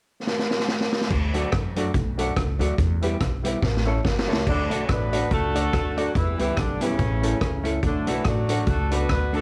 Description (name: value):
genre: ska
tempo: 143 BPM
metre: 4/4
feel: swing 57% on 8ths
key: D major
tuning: A4 = 441 Hz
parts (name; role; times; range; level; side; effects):
- street-band drum kit; drums; 0.3-9.4 s; crash cymbal, hi-hat, kick drum, rim click, snare drum; -28 LUFS; equal; none
- upright bass; bass; 1.1-9.4 s; G1 to F#2; -29 LUFS; equal; none
- hollow-body jazz guitar; accompaniment; 1.3-9.4 s; F#3 to A4; -33 LUFS; equal; none
- warm upright piano; stabs; 1.3-9.4 s; C#4 to D5; -34 LUFS; equal; none
- dark horn section; melody; 4.5-9.4 s; C#3 to C#5; -29 LUFS; equal; none
room: light reverb, small room ambience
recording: none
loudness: -24 LUFS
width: mono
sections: 0.0-1.1 A section; 1.1-4.5 B section; 4.5-9.4 C section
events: drum fill 0.3-1.1, 3.6-4.5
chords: 0.0 N.C.; 1.1 D; 2.8 Em; 3.6 A; 4.5 D; 6.1 Em; 7.0 A; 7.8 D